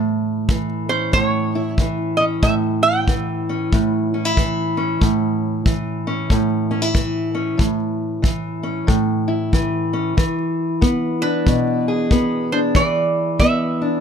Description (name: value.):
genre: acoustic country blues, solo or duo.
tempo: 93 BPM.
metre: 4/4.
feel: swing 62% on 8ths.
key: A major.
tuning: A4 = 439 Hz.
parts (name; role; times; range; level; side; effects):
fingerpicked steel-string acoustic guitar; accompaniment; 0.0-14.0 s; A2 to G#4; -19 LUFS; equal; none.
kick drum; drums; 0.5-13.6 s; none; -18 LUFS; equal; none.
lap resonator guitar; melody; 0.9-4.7, 11.2-14.0 s; B4 to G5; -20 LUFS; right 3 dB; plate reverb.
room: light reverb.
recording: none.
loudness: -17 LUFS.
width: side -7 dB against mid.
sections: 0.0-14.0 A section.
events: none.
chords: 0.0 A; 10.2 E7.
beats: 0.49 1.14 1.78 | 2.43 3.08 3.72 4.37 | 5.01 5.66 6.30 6.95 | 7.59 8.24 8.88 9.53 | 10.17 10.82 11.46 12.11 | 12.75 13.39.